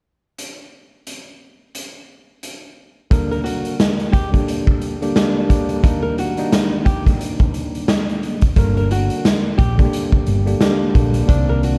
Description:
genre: hip hop, boom-bap hip-hop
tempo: 88 BPM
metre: 4/4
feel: swing 58% on 16ths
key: G harmonic minor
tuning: A4 = 440 Hz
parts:
  - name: raw garage drum kit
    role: drums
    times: 0.4-11.8 s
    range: hi-hat, kick drum, snare drum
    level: -20 LUFS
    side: equal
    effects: none
  - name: tine electric piano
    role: accompaniment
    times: 3.1-11.8 s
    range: D3 to Bb4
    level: -24 LUFS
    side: equal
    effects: overdrive, cassette tape, high-pass filter, low-pass filter, dub echo
  - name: flamenco guitar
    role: melody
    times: 3.3-11.8 s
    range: F#4 to Bb4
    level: -30 LUFS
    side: equal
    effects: high-pass filter, low-pass filter, dub echo
  - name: hollow-body short-scale fingered electric bass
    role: bass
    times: 8.6-11.8 s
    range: G1 to C2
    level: -20 LUFS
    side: equal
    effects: none
room: light reverb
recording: echo-heavy mix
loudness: -17 LUFS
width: mono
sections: 0.4-3.1 A section; 3.1-11.8 B section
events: none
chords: 0.4 N.C.; 3.1 Gm; 5.8 Ebmaj7; 8.6 Gm

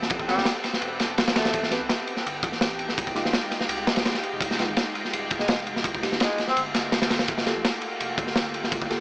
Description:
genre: drum and bass, jungle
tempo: 167 BPM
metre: 4/4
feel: straight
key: unclear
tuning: A4 = 438 Hz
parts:
  - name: lush unison pad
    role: sustained chords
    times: 0.0-9.0 s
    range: Ab3 to A4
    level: -32 LUFS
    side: equal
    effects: chorus, vintage 12-bit sampler grit
  - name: soft dub sub bass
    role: bass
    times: 0.0-9.0 s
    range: Eb1 to C2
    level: -42 LUFS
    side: equal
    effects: none
  - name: crunchy breakbeat drum kit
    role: drums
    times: 0.0-9.0 s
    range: kick drum, ride cymbal, snare drum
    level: -24 LUFS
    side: equal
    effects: none
  - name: drifting glass-harmonics texture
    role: texture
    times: 0.0-9.0 s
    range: G4 to G5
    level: -38 LUFS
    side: left 2 dB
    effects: none
  - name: warm tenor saxophone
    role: melody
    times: 0.3-1.7, 5.4-6.6 s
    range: G3 to C4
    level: -30 LUFS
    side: equal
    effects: vintage 12-bit sampler grit, dub echo
  - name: deep mellow chord stab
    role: stabs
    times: 0.3-9.0 s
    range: Ab3 to B4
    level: -34 LUFS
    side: right 1 dB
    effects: none
room: light reverb, small room ambience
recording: AM radio sound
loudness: -22 LUFS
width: side -23 dB against mid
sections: 0.0-9.0 A section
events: none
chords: 0.0 Am9; 3.0 Fm9; 6.6 Gm9

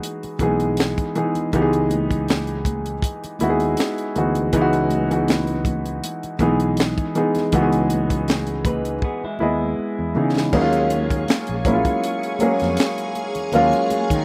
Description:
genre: R&B, neo-soul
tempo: 80 BPM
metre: 4/4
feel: swing 54% on 16ths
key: C# minor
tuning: A4 = 440 Hz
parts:
  - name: warm upright piano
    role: accompaniment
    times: 0.0-14.2 s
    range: E3 to D#5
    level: -23 LUFS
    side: equal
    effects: none
  - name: tight funk drum kit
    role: drums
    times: 0.0-14.2 s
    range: crash cymbal, finger snaps, hi-hat, kick drum, snare drum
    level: -26 LUFS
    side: equal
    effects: none
  - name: fretless electric bass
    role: bass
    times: 0.2-14.2 s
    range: A#1 to D#3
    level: -28 LUFS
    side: equal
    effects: none
  - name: congas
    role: percussion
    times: 0.4-14.1 s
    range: none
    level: -34 LUFS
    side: equal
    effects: none
  - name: electric guitar through a small old amp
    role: second line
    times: 8.7-10.3 s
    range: G#3 to B4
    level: -31 LUFS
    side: equal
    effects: warbly pitch drift, slapback echo
  - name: string machine, violins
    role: sustained chords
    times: 10.5-14.2 s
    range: G#4 to C#6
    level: -32 LUFS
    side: equal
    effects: ensemble chorus
room: little or no reverb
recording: recorded outdoors, with no room sound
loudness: -21 LUFS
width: mono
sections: 0.0-10.5 A section; 10.5-14.2 B section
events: drum fill 9.0-10.5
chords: 0.0 C#m11; 10.5 D#m11

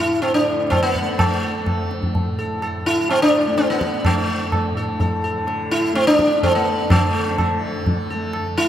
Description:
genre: indian classical, Hindustani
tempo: 126 BPM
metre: 3/4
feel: straight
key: A raga bageshri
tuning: A4 = 440 Hz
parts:
  - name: sitar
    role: melody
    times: 0.0-8.7 s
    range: A3 to A4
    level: -19 LUFS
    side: equal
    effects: none
  - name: tanpura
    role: drone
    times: 0.0-8.7 s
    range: A2 to A3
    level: -28 LUFS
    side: equal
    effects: none
  - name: tabla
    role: percussion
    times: 0.2-8.5 s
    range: none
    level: -22 LUFS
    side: equal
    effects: none
room: wet cathedral reverb, RT60 4.9 s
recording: in a vast, echoing space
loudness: -17 LUFS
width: side -10 dB against mid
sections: 0.0-6.9 A section; 6.9-8.7 B section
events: none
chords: none

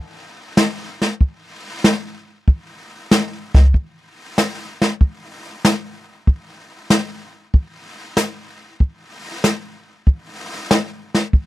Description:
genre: jazz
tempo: 95 BPM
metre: 4/4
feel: swing 69% on 8ths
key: none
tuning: none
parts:
  - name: jazz brush drum kit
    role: drums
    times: 0.6-11.5 s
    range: brushed snare drum, hi-hat, kick drum, snare drum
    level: -15 LUFS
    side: equal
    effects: none
room: light reverb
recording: dry, close 1970s-style studio recording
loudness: -17 LUFS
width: side -16 dB against mid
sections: 0.0-11.5 A section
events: none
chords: none

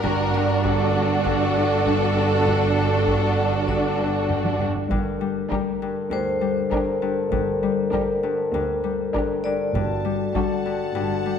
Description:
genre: cinematic, suspense film score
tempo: 99 BPM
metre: 4/4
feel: straight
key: G harmonic minor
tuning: A4 = 441 Hz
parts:
  - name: rich studio violin section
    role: melody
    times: 0.0-10.8 s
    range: A4 to Bb4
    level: -27 LUFS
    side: left 2 dB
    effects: none
  - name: rich studio violin section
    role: second line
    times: 0.0-10.8 s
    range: F#4 to G4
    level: -29 LUFS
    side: equal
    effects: none
  - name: rich studio viola section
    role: accompaniment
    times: 0.0-10.8 s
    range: D4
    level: -26 LUFS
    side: right 3 dB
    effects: none
  - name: Celtic harp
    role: riff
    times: 0.0-11.4 s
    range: G2 to G3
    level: -28 LUFS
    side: left 9 dB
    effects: none
  - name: rich studio cello section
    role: bass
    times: 0.0-11.4 s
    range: D2 to G2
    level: -28 LUFS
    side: right 4 dB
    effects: none
  - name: rich studio double bass section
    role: bass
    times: 0.0-11.4 s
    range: G1 to D2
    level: -29 LUFS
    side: right 4 dB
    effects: none
  - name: taiko ensemble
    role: drums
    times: 0.0-10.9 s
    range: none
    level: -31 LUFS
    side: equal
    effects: none
  - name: vibraphone with hard mallets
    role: texture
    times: 0.3-11.4 s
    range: D4 to D5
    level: -30 LUFS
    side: equal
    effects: none
  - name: dark French horn section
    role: sustained chords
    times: 4.9-11.4 s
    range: D3 to Bb4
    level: -26 LUFS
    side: left 2 dB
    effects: none
  - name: timpani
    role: percussion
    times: 9.7-10.6 s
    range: G2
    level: -32 LUFS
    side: equal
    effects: none
  - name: rich studio violin section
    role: texture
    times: 9.8-11.4 s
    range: F#5 to A5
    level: -33 LUFS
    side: left 5 dB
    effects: none
room: wet concert hall reverb, RT60 2.2 s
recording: minimal, uncompressed stereo recording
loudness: -20 LUFS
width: side -7 dB against mid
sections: 0.0-4.9 A section; 4.9-11.4 B section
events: drum fill 4.3-4.9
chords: 0.0 D/G; 4.9 Gm; 9.7 D/G

